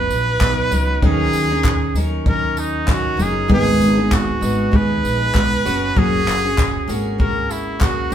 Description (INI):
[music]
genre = acoustic pop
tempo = 97 BPM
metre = 4/4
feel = swing 55% on 16ths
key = unclear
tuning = A4 = 440 Hz
[part]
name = brilliant trumpet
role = melody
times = 0.0-8.1 s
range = D#4 to B4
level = -21 LUFS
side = right 1 dB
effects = none
[part]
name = picked steel-string acoustic guitar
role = accompaniment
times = 0.0-8.1 s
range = G#2 to A#4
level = -20 LUFS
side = right 1 dB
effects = none
[part]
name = upright bass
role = bass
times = 0.0-8.1 s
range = F#1 to D#2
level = -23 LUFS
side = equal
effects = none
[part]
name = natural country drum kit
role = drums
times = 0.1-8.1 s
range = handclaps, kick drum, tambourine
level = -20 LUFS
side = equal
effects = none
[part]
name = tambourine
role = percussion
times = 0.4-8.0 s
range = none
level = -39 LUFS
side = left 3 dB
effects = none
[sound]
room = wet studio reverb, RT60 0.8 s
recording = band playing live in one room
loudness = -15 LUFS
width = side -10 dB against mid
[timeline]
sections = 0.0-8.1 A section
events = none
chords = 0.0 Bmaj7; 1.0 D#m7; 3.5 G#m; 5.7 F#add9